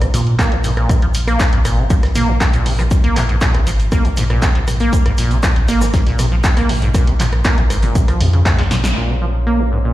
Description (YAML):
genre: acid house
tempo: 119 BPM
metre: 4/4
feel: straight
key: Bb minor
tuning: A4 = 440 Hz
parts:
  - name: acid bass, saw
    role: riff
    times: 0.0-9.9 s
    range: Ab2 to Bb3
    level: -20 LUFS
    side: right 1 dB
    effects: overdrive, lush chorus, analog delay
  - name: punchy analog drum machine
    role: drums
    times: 0.0-9.7 s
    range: handclaps, hi-hat, rim click, snare drum, toms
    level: -21 LUFS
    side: equal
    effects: low-pass filter on hats, low-pass filter on toms, low-pass filter on snare, low-pass filter on room
  - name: warm soul drum kit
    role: drums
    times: 0.0-9.0 s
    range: hi-hat, shaker, snare drum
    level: -32 LUFS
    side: equal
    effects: sidechain pumping on hats, high-pass filter on hats, high-pass filter on snare, sidechain pumping on perc, high-pass filter on perc, high-pass filter on room
  - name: saturated sub bass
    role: bass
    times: 0.1-9.9 s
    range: Ab1 to Bb2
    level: -16 LUFS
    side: equal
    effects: sidechain pumping
  - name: electronic kick drum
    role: drums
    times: 0.4-8.6 s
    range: none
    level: -14 LUFS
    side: equal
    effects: none
  - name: dark analog pad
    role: sustained chords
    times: 9.0-9.9 s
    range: Db5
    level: -32 LUFS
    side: right 2 dB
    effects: chorus, sidechain pumping
room: light reverb, small room ambience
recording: played on a big sound system in a bare room, large studio reverb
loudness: -13 LUFS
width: side -15 dB against mid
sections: 0.0-9.0 A section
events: drum fill 8.6-9.0; band accent 8.8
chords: 0.0 Bb7(no3); 9.0 Bbm